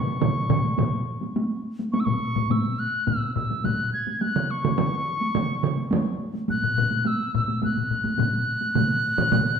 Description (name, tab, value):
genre	japanese traditional, taiko drum ensemble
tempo	105 BPM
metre	4/4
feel	straight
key	unclear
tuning	A4 = 438 Hz
part	wooden piccolo	melody	0.0-9.6 s	C#6 to G#6	-27 LUFS	left 1 dB	none
part	taiko ensemble	percussion	0.1-9.5 s	none	-28 LUFS	right 1 dB	none
part	taiko ensemble	percussion	0.2-9.5 s	none	-27 LUFS	left 4 dB	none
part	taiko ensemble	percussion	0.2-0.9, 4.4-9.5 s	none	-25 LUFS	right 5 dB	none
room	wet recital hall reverb, RT60 1.4 s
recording	minimal, uncompressed stereo recording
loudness	-22 LUFS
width	side -6 dB against mid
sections	0.0-9.6 A section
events	none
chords	none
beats	0.21 0.78 1.35 | 1.93 2.50 3.07 3.64 | 4.21 4.78 5.35 5.92 | 6.49 7.06 7.62 8.19 | 8.76 9.32